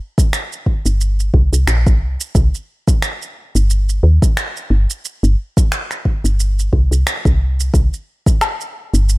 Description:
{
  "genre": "organic downtempo",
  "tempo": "89 BPM",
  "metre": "4/4",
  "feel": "swing 56% on 16ths",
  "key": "C minor",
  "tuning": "A4 = 440 Hz",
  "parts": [
    { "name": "electronic kick drum", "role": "drums", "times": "0.2-8.4 s", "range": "none", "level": "-14 LUFS", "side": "equal", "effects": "none" },
    { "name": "electronic shaker, finger snaps and woodblock", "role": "drums", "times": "0.2-9.2 s", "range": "none", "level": "-22 LUFS", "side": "right 1 dB", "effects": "none" },
    { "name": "woody FM bass", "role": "bass", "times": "0.9-9.2 s", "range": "G1 to Eb2", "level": "-14 LUFS", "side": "equal", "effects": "sidechain pumping" }
  ],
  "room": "little or no reverb",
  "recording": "none",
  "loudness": "-14 LUFS",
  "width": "side -21 dB against mid",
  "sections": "0.0-9.2 A section",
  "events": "none",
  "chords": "none"
}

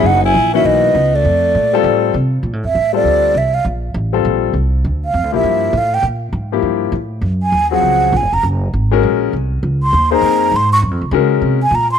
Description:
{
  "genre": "modal jazz",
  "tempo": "200 BPM",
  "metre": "4/4",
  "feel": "swing 63% on 8ths",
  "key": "unclear",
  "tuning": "A4 = 439 Hz",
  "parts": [
    { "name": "breathy mellow concert flute", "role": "melody", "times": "0.0-12.0 s", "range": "D5 to Db6", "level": "-14 LUFS", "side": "right 3 dB", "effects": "none" },
    { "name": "growling alto saxophone", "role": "second line", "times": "0.0-2.2 s", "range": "A3 to Fb4", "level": "-21 LUFS", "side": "left 12 dB", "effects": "none" },
    { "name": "clear grand piano", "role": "accompaniment", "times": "0.0-11.6 s", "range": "Fb3 to C5", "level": "-16 LUFS", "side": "left 14 dB", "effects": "none" },
    { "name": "upright bass", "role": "bass", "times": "0.0-12.0 s", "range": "F1 to Db3", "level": "-17 LUFS", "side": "right 1 dB", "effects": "none" }
  ],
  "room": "light reverb, studio reverb",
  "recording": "1960s-style stereo",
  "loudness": "-12 LUFS",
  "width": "side -8 dB against mid",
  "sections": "0.0-2.4 A section; 2.4-12.0 B section",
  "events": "flute solo 2.4-12.0",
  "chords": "0.0 Gb13sus4; 1.2 F69; 2.4 Bbmaj9; 7.2 Gbmaj9"
}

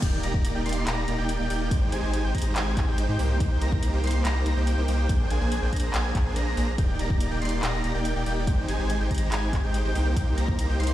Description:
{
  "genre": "future bass",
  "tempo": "142 BPM",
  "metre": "4/4",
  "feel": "half-time",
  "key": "unclear",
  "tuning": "A4 = 442 Hz",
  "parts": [
    { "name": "airy dreamy lead", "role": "arpeggios", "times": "0.0-10.9 s", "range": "G6 to C7", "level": "-36 LUFS", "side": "equal", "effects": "chorus, sidechain pumping" },
    { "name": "supersaw chords", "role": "riff", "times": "0.0-10.9 s", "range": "Ab3 to C6", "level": "-29 LUFS", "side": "right 1 dB", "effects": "sidechain pumping, low-pass filter, digital delay" },
    { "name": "saturated sub bass", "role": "bass", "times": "0.0-10.9 s", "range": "Eb1 to Ab2", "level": "-27 LUFS", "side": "equal", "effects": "sidechain pumping" },
    { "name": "electronic kick drum", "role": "drums", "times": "0.0-10.6 s", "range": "none", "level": "-26 LUFS", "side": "equal", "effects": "none" },
    { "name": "pop drum kit", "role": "drums", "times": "0.0-10.9 s", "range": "crash cymbal, handclaps, hi-hat", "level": "-34 LUFS", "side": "equal", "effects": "none" }
  ],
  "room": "digital ambience",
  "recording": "played on a big sound system in a bare room, stone room reverb",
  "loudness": "-23 LUFS",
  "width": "side -13 dB against mid",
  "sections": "0.0-10.9 A section",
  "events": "drop 0.0-10.9",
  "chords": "0.0 Ebmaj7; 1.7 Abmaj7; 3.2 Cm7; 5.1 Bb13; 6.8 Ebmaj7; 8.5 Abmaj7; 10.0 Cm7"
}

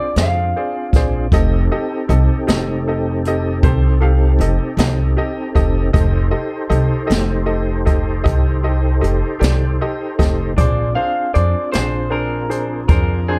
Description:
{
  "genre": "slow blues",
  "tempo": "52 BPM (dotted quarters)",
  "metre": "12/8",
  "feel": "straight",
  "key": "F mixolydian",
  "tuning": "A4 = 443 Hz",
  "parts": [
    { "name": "electric guitar through a small old amp", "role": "melody", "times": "0.0-1.7, 10.6-13.4 s", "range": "Ab4 to F5", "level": "-24 LUFS", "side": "equal", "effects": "none" },
    { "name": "clear baby grand piano", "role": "accompaniment", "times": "0.0-13.4 s", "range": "D4 to F5", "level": "-26 LUFS", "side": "equal", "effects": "none" },
    { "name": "tonewheel organ", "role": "sustained chords", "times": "0.0-13.4 s", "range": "C4 to C5", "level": "-27 LUFS", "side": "equal", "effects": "chorus vibrato, slow rotary speaker" },
    { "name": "upright bass", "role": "bass", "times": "0.2-13.4 s", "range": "F1 to F2", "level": "-19 LUFS", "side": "equal", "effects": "none" },
    { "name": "jazz brush drum kit", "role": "drums", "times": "0.2-13.1 s", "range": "hi-hat, kick drum, snare drum", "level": "-20 LUFS", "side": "equal", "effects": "none" }
  ],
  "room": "light reverb",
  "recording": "dark, warm production",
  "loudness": "-17 LUFS",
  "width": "mono",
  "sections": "0.0-13.4 A section",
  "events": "none",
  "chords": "0.0 Bb7; 1.3 F7; 10.6 Bb7"
}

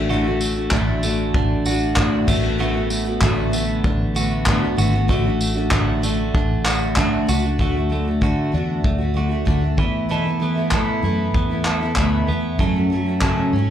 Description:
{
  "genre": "acoustic pop",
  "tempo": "96 BPM",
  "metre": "4/4",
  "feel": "straight",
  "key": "unclear",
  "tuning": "A4 = 437 Hz",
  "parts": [
    { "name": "picked steel-string acoustic guitar", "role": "accompaniment", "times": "0.0-13.7 s", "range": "E2 to F#4", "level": "-22 LUFS", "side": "left 1 dB", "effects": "double-tracked left and right" },
    { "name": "clean electric guitar", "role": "arpeggios", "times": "0.0-13.7 s", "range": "E3 to A4", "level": "-25 LUFS", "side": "right 4 dB", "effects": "slapback echo" },
    { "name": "vintage muted fingered electric bass", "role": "bass", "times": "0.0-13.7 s", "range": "G#1 to G#2", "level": "-23 LUFS", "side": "equal", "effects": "none" },
    { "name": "natural country drum kit", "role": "drums", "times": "0.4-13.4 s", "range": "crash cymbal, handclaps, kick drum, tambourine", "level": "-22 LUFS", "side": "equal", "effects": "none" }
  ],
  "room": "light reverb",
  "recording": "live gig heard through the venue's PA, club reverb",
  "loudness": "-17 LUFS",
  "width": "side -10 dB against mid",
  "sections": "0.0-7.6 A section; 7.6-13.7 B section",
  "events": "none",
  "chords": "0.0 D/A; 2.3 Bm/A; 5.1 D/A; 7.6 D; 9.8 Esus4; 12.6 F#m"
}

